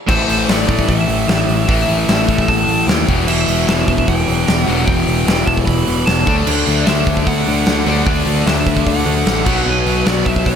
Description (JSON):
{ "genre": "hard rock", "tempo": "150 BPM", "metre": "4/4", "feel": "straight", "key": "unclear", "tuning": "A4 = 439 Hz", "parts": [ { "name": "high-gain lead guitar", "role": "melody", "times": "0.1-10.6 s", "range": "B4 to B5", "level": "-21 LUFS", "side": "equal", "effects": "distortion" }, { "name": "high-gain distorted guitar", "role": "riff", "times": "0.1-10.6 s", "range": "E2 to D4", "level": "-21 LUFS", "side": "right 12 dB", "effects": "distortion" }, { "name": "overdriven semi-hollow guitar", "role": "riff", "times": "0.1-10.6 s", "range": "E2 to D4", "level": "-19 LUFS", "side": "left 11 dB", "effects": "none" }, { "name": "modern bright picked electric bass", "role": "bass", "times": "0.1-10.6 s", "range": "E1 to D#2", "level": "-19 LUFS", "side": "right 1 dB", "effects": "none" }, { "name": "big rock drum kit", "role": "drums", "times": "0.1-10.6 s", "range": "crash cymbal, hi-hat, kick drum, snare drum", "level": "-18 LUFS", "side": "equal", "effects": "none" }, { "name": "heavy high-gain guitar", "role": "riff", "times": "6.5-10.6 s", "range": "B2 to D4", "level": "-24 LUFS", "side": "equal", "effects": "distortion" } ], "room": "little or no reverb", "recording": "none", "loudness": "-12 LUFS", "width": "side -8 dB against mid", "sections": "0.1-10.6 A section", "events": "none", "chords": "0.1 A5; 3.1 Em; 6.3 D; 9.5 Bm", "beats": "| 0.08 0.48 0.88 1.28 | 1.68 2.08 2.48 2.88 | 3.27 3.67 4.07 4.47 | 4.87 5.27 5.67 6.07 | 6.47 6.87 7.27 7.67 | 8.07 8.46 8.86 9.26 | 9.66 10.06 10.46" }